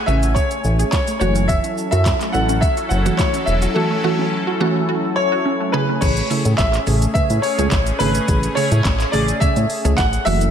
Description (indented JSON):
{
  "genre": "dance-pop",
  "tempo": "106 BPM",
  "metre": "4/4",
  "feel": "straight",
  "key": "A major",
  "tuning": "A4 = 440 Hz",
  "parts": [
    { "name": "clear baby grand piano", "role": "melody", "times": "0.0-10.5 s", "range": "A4 to F#5", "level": "-21 LUFS", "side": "left 1 dB", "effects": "analog chorus, ping-pong delay" },
    { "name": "sweeping resonant pad", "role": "sustained chords", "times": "0.0-10.5 s", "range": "F#3 to G#5", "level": "-25 LUFS", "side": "left 1 dB", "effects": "chorus, sidechain pumping" },
    { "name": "wide unison pluck", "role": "arpeggios", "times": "0.0-6.0 s", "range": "A3 to G#4", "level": "-27 LUFS", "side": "right 1 dB", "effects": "wide subtle chorus, sidechain pumping, ping-pong delay" },
    { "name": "mallet-like synth pluck", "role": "accompaniment", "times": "0.1-10.5 s", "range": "C#3 to B4", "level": "-23 LUFS", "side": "right 3 dB", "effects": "chorus, sidechain pumping" },
    { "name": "chorused synth bass", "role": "bass", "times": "0.1-10.5 s", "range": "E1 to A2", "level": "-18 LUFS", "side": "equal", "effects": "sidechain pumping" },
    { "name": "smooth R&B drum kit", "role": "drums", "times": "0.1-10.5 s", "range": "crash cymbal, handclaps, hi-hat, kick drum, shaker, snare drum", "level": "-22 LUFS", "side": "equal", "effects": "none" }
  ],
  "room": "moderate lush hall reverb, RT60 2.1 s",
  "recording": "dreamy mix soaked in reverb",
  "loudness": "-15 LUFS",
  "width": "side -8 dB against mid",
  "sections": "0.0-6.0 A section; 6.0-10.5 B section",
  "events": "drums muted 3.8-6.0",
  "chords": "0.0 Amaj7; 1.2 F#m7; 5.7 Amaj7"
}